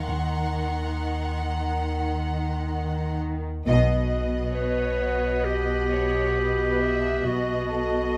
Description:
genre	cinematic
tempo	67 BPM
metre	4/4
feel	straight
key	unclear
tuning	A4 = 440 Hz
part	rich symphonic violin section	melody	0.0-8.2 s	D#5 to F#5	-37 LUFS	equal	none
part	rich symphonic cello section	bass	0.0-8.2 s	B2 to D#3	-32 LUFS	equal	none
part	punchy sub bass	drone	0.0-8.2 s	B1 to D#2	-32 LUFS	equal	none
part	bright symphonic violin section	texture	0.0-8.2 s	A#5 to F#6	-44 LUFS	equal	none
part	vibraphone with soft mallets	texture	0.0-8.2 s	F#4 to A5	-40 LUFS	equal	none
part	rich symphonic double bass section	bass	0.1-8.1 s	B1 to D#2	-32 LUFS	equal	none
part	rich symphonic violin section	second line	3.7-8.2 s	B4 to E5	-34 LUFS	equal	none
part	bright clarinet	second line	4.5-8.2 s	F#4 to B4	-27 LUFS	equal	none
room	moderate scoring stage reverb, RT60 1.9 s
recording	close, detailed microphones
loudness	-26 LUFS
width	mono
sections	0.0-3.7 A section; 3.7-8.2 B section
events	band accent 3.7-4.6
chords	0.0 D#m; 3.7 Badd9

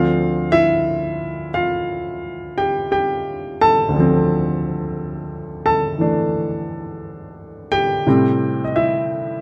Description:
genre	solo jazz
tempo	58 BPM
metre	4/4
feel	swing 66% on 8ths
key	unclear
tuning	A4 = 443 Hz
part	warm baby grand piano	solo	0.0-9.4 s	D2 to A5	-20 LUFS	equal	none
room	moderate studio reverb, RT60 0.7 s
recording	close, detailed microphones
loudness	-19 LUFS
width	mono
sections	0.0-9.4 A section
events	none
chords	0.0 Dm7; 8.1 Am7

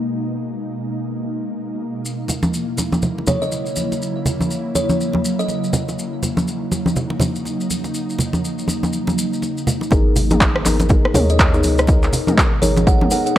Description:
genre	afro house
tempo	122 BPM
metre	4/4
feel	swing 60% on 16ths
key	G# minor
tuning	A4 = 440 Hz
part	ethereal airy pad	sustained chords	0.0-13.4 s	B2 to A#4	-24 LUFS	equal	ensemble chorus, built-in reverb, sidechain pumping
part	maracas	percussion	2.1-13.3 s	none	-29 LUFS	left 2 dB	none
part	congas	percussion	2.3-13.2 s	none	-21 LUFS	right 1 dB	none
part	kalimba	melody	3.3-5.7, 11.2-13.3 s	C#5 to F#5	-24 LUFS	right 2 dB	tape echo
part	deep mellow chord stab	stabs	9.9-13.4 s	B3 to A#4	-22 LUFS	left 3 dB	chorus, vintage 12-bit sampler grit, sidechain pumping, tape echo
part	round analog bass	bass	9.9-13.1 s	G#1 to D#2	-20 LUFS	equal	sidechain pumping
part	deep house drum kit	drums	9.9-13.3 s	handclaps, hi-hat, rim click, toms	-20 LUFS	equal	overdrive, low-pass filter on hats, low-pass filter on toms, low-pass filter on snare
part	electronic kick drum	drums	9.9-13.0 s	none	-16 LUFS	equal	overdrive
room	light reverb, digital ambience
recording	dry, gritty hardware recording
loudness	-16 LUFS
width	side -12 dB against mid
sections	0.0-9.9 A section; 9.9-13.4 B section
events	drop 9.9-13.4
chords	0.0 G#madd9; 2.0 F#7; 9.9 G#madd9

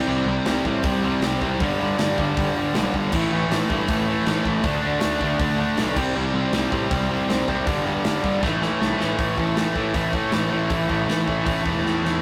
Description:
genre	punk rock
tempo	158 BPM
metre	4/4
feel	straight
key	A minor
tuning	A4 = 441 Hz
part	crunchy overdriven guitar	riff	0.0-9.2 s	G2 to D4	-30 LUFS	equal	none
part	overdriven semi-hollow guitar	riff	0.0-12.2 s	G2 to D4	-28 LUFS	equal	none
part	tight distorted guitar	riff	0.0-12.2 s	G2 to D4	-28 LUFS	equal	distortion
part	fuzz picked electric bass	bass	0.1-12.2 s	E1 to A2	-29 LUFS	equal	overdrive
part	big rock drum kit	drums	0.5-12.1 s	crash cymbal, hi-hat, kick drum, snare drum	-30 LUFS	equal	none
room	light reverb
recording	rough rehearsal-room recording, tube saturation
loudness	-22 LUFS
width	mono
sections	0.0-9.2 A section; 9.2-12.2 B section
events	drum fill 8.4-9.2, 11.8-12.2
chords	0.0 C5; 1.6 G5; 3.1 A5; 4.6 D5; 6.0 C5; 7.7 G5; 8.4 Am; 9.2 A5

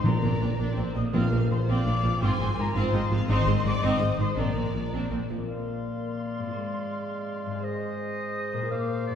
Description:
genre	cinematic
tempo	111 BPM (dotted quarters)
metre	6/8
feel	straight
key	Bb mixolydian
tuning	A4 = 436 Hz
part	rich symphonic violin section	second line	0.0-4.9 s	Bb4 to F5	-35 LUFS	left 2 dB	none
part	small flute group	second line	0.0-9.2 s	Bb5 to F6	-35 LUFS	left 2 dB	none
part	clear studio viola section	accompaniment	0.0-5.4 s	Eb3 to F4	-33 LUFS	right 2 dB	none
part	concert harp	arpeggios	0.0-9.2 s	Ab2 to C6	-32 LUFS	left 3 dB	none
part	rich symphonic double bass section	bass	0.0-5.4 s	Ab1 to Bb1	-30 LUFS	right 2 dB	none
part	timpani	percussion	0.0-1.6 s	Bb2	-28 LUFS	equal	none
part	warm symphonic violin section	melody	0.1-5.2 s	C5 to Ab5	-39 LUFS	left 3 dB	none
part	rich symphonic cello section	bass	0.1-5.4 s	Ab2 to Bb2	-30 LUFS	right 1 dB	none
part	clear oboe	second line	5.5-9.2 s	D5 to F5	-38 LUFS	right 1 dB	none
part	warm clarinet	second line	5.5-9.2 s	C5 to D5	-36 LUFS	equal	none
part	dark French horn section	sustained chords	5.5-9.2 s	Ab3 to Bb3	-34 LUFS	left 3 dB	none
room	wet scoring stage reverb, RT60 1.8 s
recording	heard from further back in the room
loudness	-25 LUFS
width	side -8 dB against mid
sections	0.0-5.5 A section; 5.5-9.2 B section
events	none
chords	0.0 Bbadd9; 2.2 Fm/Ab; 3.3 Ab; 4.4 Bbadd9; 6.6 Fm/Ab; 7.6 Ab

